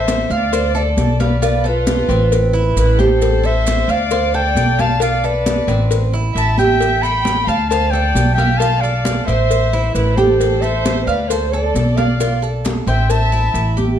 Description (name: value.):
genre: latin, Cuban son and guajira.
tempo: 134 BPM.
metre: 4/4.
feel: straight.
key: A minor.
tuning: A4 = 439 Hz.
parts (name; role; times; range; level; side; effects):
mellow clarinet; melody; 0.0-13.8 s; B4 to B5; -20 LUFS; left 2 dB; none.
warm studio violin section; second line; 0.0-13.8 s; E4 to G5; -24 LUFS; equal; none.
Cuban tres; arpeggios; 0.0-14.0 s; C4 to F5; -21 LUFS; right 6 dB; none.
upright bass; bass; 0.0-14.0 s; A1 to D2; -17 LUFS; equal; none.
congas; percussion; 0.1-14.0 s; none; -24 LUFS; equal; none.
cowbell; percussion; 0.1-13.8 s; none; -26 LUFS; left 9 dB; none.
maracas; percussion; 0.1-14.0 s; none; -34 LUFS; right 6 dB; none.
room: moderate large studio reverb, RT60 1.2 s.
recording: dark, warm production.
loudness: -13 LUFS.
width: side -9 dB against mid.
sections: 0.0-14.0 A section.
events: none.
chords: 0.0 Am; 0.5 Dm7; 1.4 Bm7b5; 2.3 Am; 3.2 Am7; 4.1 Dm7; 5.0 Bm7b5; 5.9 Am; 6.8 G9/A; 7.7 Dm7; 8.6 Bm7b5; 9.5 Am; 10.4 Am7; 11.3 Dm7; 12.2 Am11; 13.1 Am.